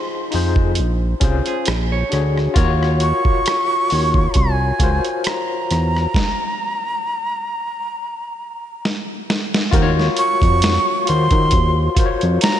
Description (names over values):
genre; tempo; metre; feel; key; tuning
R&B, neo-soul; 67 BPM; 4/4; swing 55% on 16ths; Eb dorian; A4 = 440 Hz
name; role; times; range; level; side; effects
breathy jazz flute; melody; 0.0-12.6 s; Ab5 to Db6; -21 LUFS; right 1 dB; slapback echo
overdriven tine electric piano; accompaniment; 0.0-12.6 s; Db4 to C#5; -22 LUFS; left 6 dB; fast tremolo, slapback echo
fat analog bass; bass; 0.3-12.4 s; Bb1 to Eb3; -18 LUFS; right 1 dB; none
boom bap sampler-style drum kit; drums; 0.3-12.6 s; hi-hat, kick drum, rim click, snare drum; -20 LUFS; right 1 dB; none
semi-hollow electric guitar; second line; 1.5-2.5 s; Ab4 to C#5; -29 LUFS; right 6 dB; tremolo
room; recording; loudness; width
moderate lush hall reverb, RT60 3.0 s; big arena sound, nothing above 10.9 kHz; -16 LUFS; side -10 dB against mid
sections
0.0-9.7 A section; 9.7-12.6 B section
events
stop 6.1-9.7; drum fill 8.8-9.7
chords
0.0 Fm7; 0.8 Bbm7; 1.7 Bb7alt; 2.6 Ebm9; 6.1 N.C.; 9.7 Ebm9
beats
0.77 1.67 | 2.56 3.46 4.36 5.25 | 6.15 7.04 7.94 8.83 | 9.73 10.62 11.52 12.41